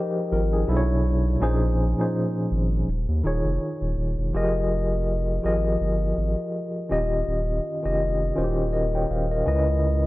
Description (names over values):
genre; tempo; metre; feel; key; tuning
R&B, neo-soul; 82 BPM; 4/4; swing 57% on 16ths; unclear; A4 = 438 Hz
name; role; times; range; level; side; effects
tine electric piano; accompaniment; 0.0-10.1 s; Bb2 to G5; -24 LUFS; equal; overdrive, fast tremolo
saturated sub bass; bass; 0.3-10.1 s; Eb1 to Eb2; -24 LUFS; equal; none
room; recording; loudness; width
moderate plate reverb, RT60 2.7 s; lossy compression artefacts; -22 LUFS; side -18 dB against mid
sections
0.0-4.3 A section; 4.3-10.1 B section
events
none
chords
0.0 Fm11; 0.7 Bm11; 1.4 Bbm11; 2.9 Eb7sus4; 4.3 Fm11; 6.9 Eb9; 9.5 Dbm7